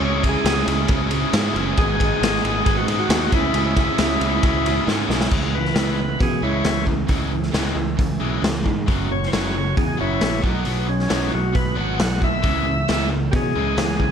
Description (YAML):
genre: classic rock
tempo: 135 BPM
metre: 4/4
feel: straight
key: C# minor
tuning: A4 = 440 Hz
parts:
  - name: overdriven tonewheel organ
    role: melody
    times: 0.0-14.1 s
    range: C#4 to F#5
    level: -24 LUFS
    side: left 1 dB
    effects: slow rotary speaker
  - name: ensemble organ-string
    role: sustained chords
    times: 0.0-14.1 s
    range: E3 to G#4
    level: -35 LUFS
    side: equal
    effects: none
  - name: overdriven electric guitar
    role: riff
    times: 0.0-14.1 s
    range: F#2 to G#4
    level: -27 LUFS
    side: left 13 dB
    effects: none
  - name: raw garage guitar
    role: riff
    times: 0.0-14.1 s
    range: F#2 to G#4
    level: -26 LUFS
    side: right 12 dB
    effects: overdrive
  - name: modern bright picked electric bass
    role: bass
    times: 0.0-14.1 s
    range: F#1 to B2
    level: -25 LUFS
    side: equal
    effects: none
  - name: raw garage drum kit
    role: drums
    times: 0.2-14.1 s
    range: crash cymbal, hi-hat, kick drum, ride cymbal, snare drum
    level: -22 LUFS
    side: equal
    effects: none
room: light reverb, small room ambience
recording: none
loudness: -18 LUFS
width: side -7 dB against mid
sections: 0.0-5.3 A section; 5.3-14.1 B section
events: drum fill 4.9-5.3; tonewheel organ solo 5.3-14.1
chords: 0.0 C#m; 1.8 G#m; 3.3 C#m; 8.9 F#; 10.4 B; 12.4 C#m